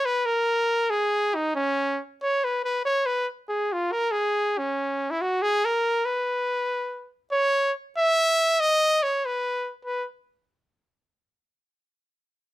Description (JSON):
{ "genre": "mexican folk", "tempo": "94 BPM (dotted quarters)", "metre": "6/8", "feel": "rubato", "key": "B major", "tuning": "A4 = 440 Hz", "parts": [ { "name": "bright trumpet", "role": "solo", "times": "0.0-10.1 s", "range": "C#4 to E5", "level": "-22 LUFS", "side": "equal", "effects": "none" } ], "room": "light reverb", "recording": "none", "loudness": "-22 LUFS", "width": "side -16 dB against mid", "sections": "0.0-7.3 A section; 7.3-9.9 B section; 9.9-11.1 C section", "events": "none", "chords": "none", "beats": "0.23 | 0.87 1.52 | 2.18 2.84 | 3.48 4.12 | 4.76 5.39 | 6.02 6.67 | 7.32 7.96 | 8.59 9.22 | 9.86" }